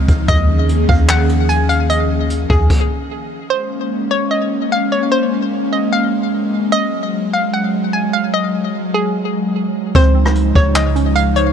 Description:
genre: hip hop, atmospheric cloud-rap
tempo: 149 BPM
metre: 4/4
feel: half-time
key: Bb minor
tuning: A4 = 442 Hz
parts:
  - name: airy breathy pad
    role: sustained chords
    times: 0.0-11.5 s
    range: Db3 to Ab4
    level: -18 LUFS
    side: equal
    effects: chorus, sidechain pumping
  - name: clean 808-style bass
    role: bass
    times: 0.0-2.7, 9.9-11.5 s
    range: Db2 to Eb2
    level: -15 LUFS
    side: equal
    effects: none
  - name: jazz brush drum kit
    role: drums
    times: 0.1-2.8, 9.9-11.5 s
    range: crash cymbal, handclaps, hi-hat, kick drum, rim click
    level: -16 LUFS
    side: equal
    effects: vintage 12-bit sampler grit
  - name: hollow square pluck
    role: melody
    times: 0.3-11.5 s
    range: Ab4 to Ab5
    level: -19 LUFS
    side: left 1 dB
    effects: chorus, low-pass filter, ping-pong delay
  - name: hollow square pluck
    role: arpeggios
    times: 9.9-11.5 s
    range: C4 to F5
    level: -22 LUFS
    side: right 10 dB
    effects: chorus, low-pass filter, ping-pong delay
room: small room ambience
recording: none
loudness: -13 LUFS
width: side -8 dB against mid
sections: 0.0-3.5 A section; 3.5-11.5 B section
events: stop 2.7-3.5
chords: 0.3 Eb7sus4; 3.5 Bbm11; 6.7 Ab5; 9.9 Dbmaj7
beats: | 0.28 0.69 1.09 1.49 | 1.90 2.30 2.70 3.10 | 3.51 3.91 4.31 4.71 | 5.12 5.52 5.92 6.33 | 6.73 7.13 7.53 7.94 | 8.34 8.74 9.14 9.55 | 9.95 10.35 10.76 11.16

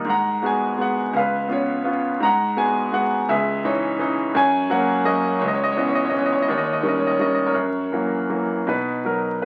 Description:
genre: classical, lyrical solo piano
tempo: 56 BPM (dotted quarters)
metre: 6/8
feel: rubato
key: G# minor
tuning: A4 = 441 Hz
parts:
  - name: bright grand piano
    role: solo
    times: 0.0-9.4 s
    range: C#2 to A#5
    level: -21 LUFS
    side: equal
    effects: none
room: wet studio reverb, RT60 0.5 s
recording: very old 78 rpm record, vinyl crackle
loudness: -21 LUFS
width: mono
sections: 0.0-8.7 A section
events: none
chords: 0.1 G#m7; 1.2 C#7; 2.2 G#m7; 3.3 C#madd9; 4.4 F#; 5.4 C#m7; 6.5 D#7; 7.6 F#7; 8.7 B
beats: | 0.07 1.16 | 2.23 3.30 | 4.36 5.41 | 6.47 7.55 | 8.68

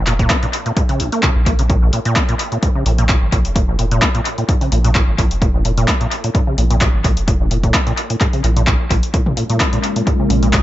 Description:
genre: acid house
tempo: 129 BPM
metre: 4/4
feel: swing 54% on 16ths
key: Bb minor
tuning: A4 = 435 Hz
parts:
  - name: acid bass, saw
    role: riff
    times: 0.0-10.6 s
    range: Bb1 to Db4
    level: -20 LUFS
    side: equal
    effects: overdrive, analog chorus, cassette tape, sidechain pumping, dub echo
  - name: saturated sub bass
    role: bass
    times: 0.0-10.6 s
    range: F1 to Bb1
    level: -17 LUFS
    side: equal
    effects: sidechain pumping
  - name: punchy analog drum machine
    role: drums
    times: 0.1-10.6 s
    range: handclaps, hi-hat, toms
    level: -20 LUFS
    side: left 1 dB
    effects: overdrive, analog delay
  - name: electronic kick drum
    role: drums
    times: 0.2-10.6 s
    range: none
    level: -17 LUFS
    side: equal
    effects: overdrive
  - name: dark analog pad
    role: sustained chords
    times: 9.5-10.6 s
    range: Ab3 to Bb4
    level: -20 LUFS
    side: left 2 dB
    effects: chorus, sidechain pumping
room: light reverb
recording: echo-heavy mix, nothing above 7.8 kHz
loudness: -13 LUFS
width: side -14 dB against mid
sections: 0.0-10.6 A section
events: filter sweep on acid bass 0.0-10.6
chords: 0.0 Bbm7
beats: 0.30 0.77 1.23 | 1.70 2.16 2.63 3.09 | 3.56 4.02 4.49 4.95 | 5.42 5.88 6.35 6.81 | 7.28 7.74 8.21 8.67 | 9.14 9.60 10.07 10.53

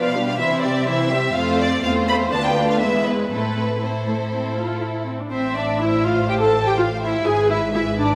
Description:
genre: quick classical-period movement for string orchestra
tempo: 123 BPM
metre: 4/4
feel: straight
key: A minor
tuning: A4 = 440 Hz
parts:
  - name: warm studio violin section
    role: melody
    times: 0.0-8.2 s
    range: B4 to B5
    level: -28 LUFS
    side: equal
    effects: none
  - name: rich studio violin section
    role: second line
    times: 0.0-8.2 s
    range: E4 to A5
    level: -27 LUFS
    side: equal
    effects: none
  - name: dark studio viola section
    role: accompaniment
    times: 0.0-8.2 s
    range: E3 to A4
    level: -24 LUFS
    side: equal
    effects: none
  - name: warm studio cello section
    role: bass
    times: 0.0-8.2 s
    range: D2 to C3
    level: -28 LUFS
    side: equal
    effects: none
  - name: rich studio double bass section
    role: bass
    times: 5.3-8.2 s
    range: G#1 to A1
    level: -32 LUFS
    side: equal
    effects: none
room: wet scoring stage reverb, RT60 2.0 s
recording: none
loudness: -20 LUFS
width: mono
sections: 0.0-5.3 A section; 5.3-8.2 B section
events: none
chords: 0.4 C; 1.4 F; 2.3 Bm7b5/D; 2.8 E; 3.3 Am; 7.3 E/G#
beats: 0.40 0.88 | 1.36 1.84 2.33 2.82 | 3.32 3.82 4.32 4.82 | 5.32 5.81 6.29 6.78 | 7.26 7.74

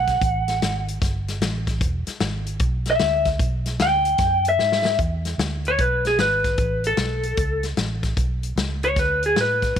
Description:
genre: electric blues shuffle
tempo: 151 BPM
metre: 4/4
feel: swing 65% on 8ths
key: E mixolydian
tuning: A4 = 439 Hz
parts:
  - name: electric guitar through a small old amp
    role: melody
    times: 0.0-9.8 s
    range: G#4 to G5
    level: -20 LUFS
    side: equal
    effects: none
  - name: vintage muted fingered electric bass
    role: bass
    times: 0.0-9.8 s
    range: E1 to A2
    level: -26 LUFS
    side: right 1 dB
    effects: none
  - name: natural country drum kit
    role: drums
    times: 0.1-9.8 s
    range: hi-hat, kick drum, snare drum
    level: -25 LUFS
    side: left 1 dB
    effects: none
room: light reverb, small room reverb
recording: 1960s-style stereo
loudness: -19 LUFS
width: side -9 dB against mid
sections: 0.0-5.0 A section; 5.0-9.8 B section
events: clean electric guitar solo 0.0-5.0; drum fill 4.6-5.0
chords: 0.2 Gsus2; 1.8 E7; 6.6 A; 8.2 E7(no3) (rootless)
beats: | 0.22 0.62 1.01 1.41 | 1.81 2.21 2.60 3.00 | 3.40 3.79 4.19 4.59 | 4.99 5.38 5.78 6.18 | 6.58 6.98 7.38 7.77 | 8.17 8.57 8.97 9.37 | 9.77

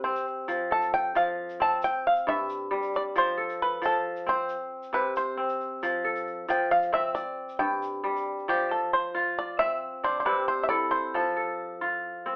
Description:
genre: west african traditional, West African string and xylophone music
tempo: 90 BPM (dotted quarters)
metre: 12/8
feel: straight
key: F lydian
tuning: A4 = 440 Hz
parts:
  - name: bluegrass banjo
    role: melody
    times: 0.0-12.4 s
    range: G4 to A5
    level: -26 LUFS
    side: equal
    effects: none
  - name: kora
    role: arpeggios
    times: 0.0-12.4 s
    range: G2 to A4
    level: -28 LUFS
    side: equal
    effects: none
  - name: tube shaker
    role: percussion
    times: 0.2-8.4 s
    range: none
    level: -57 LUFS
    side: equal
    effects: none
room: moderate studio reverb, RT60 0.5 s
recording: band playing live in one room, telephone sound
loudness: -25 LUFS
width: side -24 dB against mid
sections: 0.0-8.5 A section; 8.5-12.4 B section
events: five-string banjo solo 0.0-8.5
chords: 0.5 F; 1.8 N.C.; 3.2 F; 4.5 N.C.; 5.8 F; 7.2 N.C.; 8.5 F5; 9.8 C; 11.1 F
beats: | 0.50 1.16 1.83 2.50 | 3.16 3.83 4.49 5.16 | 5.82 6.49 7.15 7.82 | 8.48 9.15 9.81 10.48 | 11.15 11.81

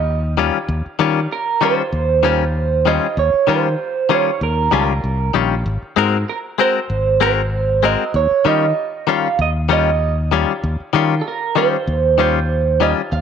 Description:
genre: straight-eighth soul blues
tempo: 96 BPM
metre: 4/4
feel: swing 54% on 16ths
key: Eb mixolydian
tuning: A4 = 440 Hz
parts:
  - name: electric guitar through a small old amp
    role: melody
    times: 0.0-13.2 s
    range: A4 to F5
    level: -18 LUFS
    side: right 7 dB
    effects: phaser
  - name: fingered electric bass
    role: bass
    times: 0.0-13.2 s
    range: Ab1 to Eb3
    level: -19 LUFS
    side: equal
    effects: none
  - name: direct-recorded clean electric guitar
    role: stabs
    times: 0.4-13.0 s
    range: Eb3 to Bb4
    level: -19 LUFS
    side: left 10 dB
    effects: none
room: moderate spring reverb, RT60 1.6 s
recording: 1960s-style stereo with parts hard left and right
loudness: -15 LUFS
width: side -7 dB against mid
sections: 0.0-13.2 A section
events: none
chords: 0.0 Eb9; 5.7 Ab9; 8.1 Eb9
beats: 0.06 | 0.69 1.31 1.93 2.55 | 3.17 3.79 4.41 5.03 | 5.66 6.28 6.90 7.52 | 8.14 8.77 9.39 10.01 | 10.63 11.25 11.87 12.50 | 13.12

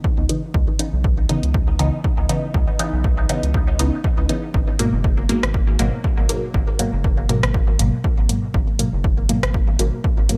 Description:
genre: dub techno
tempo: 120 BPM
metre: 4/4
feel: swing 56% on 16ths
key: C# minor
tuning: A4 = 439 Hz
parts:
  - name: electronic kick drum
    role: drums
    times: 0.0-10.2 s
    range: none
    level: -22 LUFS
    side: equal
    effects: none
  - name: round analog bass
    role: bass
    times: 0.2-10.3 s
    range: F#1 to C#2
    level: -24 LUFS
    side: equal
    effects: sidechain pumping
  - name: filtered dub chord stab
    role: stabs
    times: 0.3-10.4 s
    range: G#2 to D#4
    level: -25 LUFS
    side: equal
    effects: phaser, sidechain pumping, dub echo
  - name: deep house drum kit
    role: drums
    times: 0.3-10.4 s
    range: hi-hat, rim click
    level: -26 LUFS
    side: equal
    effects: overdrive
room: light reverb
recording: none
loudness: -19 LUFS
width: mono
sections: 0.0-10.4 A section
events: none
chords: 0.0 C#m9; 4.5 G#m9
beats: 0.04 | 0.54 1.04 1.54 2.04 | 2.54 3.04 3.54 4.04 | 4.54 5.04 5.54 6.04 | 6.54 7.04 7.54 8.04 | 8.54 9.04 9.54 10.04

